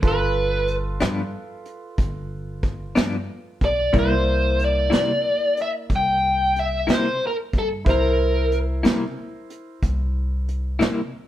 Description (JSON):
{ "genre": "slow blues", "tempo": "61 BPM (dotted quarters)", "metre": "12/8", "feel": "straight", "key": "unclear", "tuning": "A4 = 439 Hz", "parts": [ { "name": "clear baby grand piano", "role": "accompaniment", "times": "0.0-11.3 s", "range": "Bb3 to D5", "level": "-29 LUFS", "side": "right 2 dB", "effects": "none" }, { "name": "upright bass", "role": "bass", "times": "0.0-11.1 s", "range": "G1 to C3", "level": "-25 LUFS", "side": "equal", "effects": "none" }, { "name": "vintage brush drum kit", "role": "drums", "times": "0.0-11.0 s", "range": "hi-hat, kick drum, snare drum", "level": "-22 LUFS", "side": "equal", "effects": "none" }, { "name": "biting lead guitar", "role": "melody", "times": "0.1-8.6 s", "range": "A4 to G5", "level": "-21 LUFS", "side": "left 1 dB", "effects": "overdrive" }, { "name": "clean electric guitar", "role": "accompaniment", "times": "1.0-11.0 s", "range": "G2 to E4", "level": "-24 LUFS", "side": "left 3 dB", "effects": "tremolo" } ], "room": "moderate stone room reverb, RT60 1.2 s", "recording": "band playing live in one room", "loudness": "-19 LUFS", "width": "side -12 dB against mid", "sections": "0.0-11.3 A section", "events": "none", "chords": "0.0 G7; 3.9 C7" }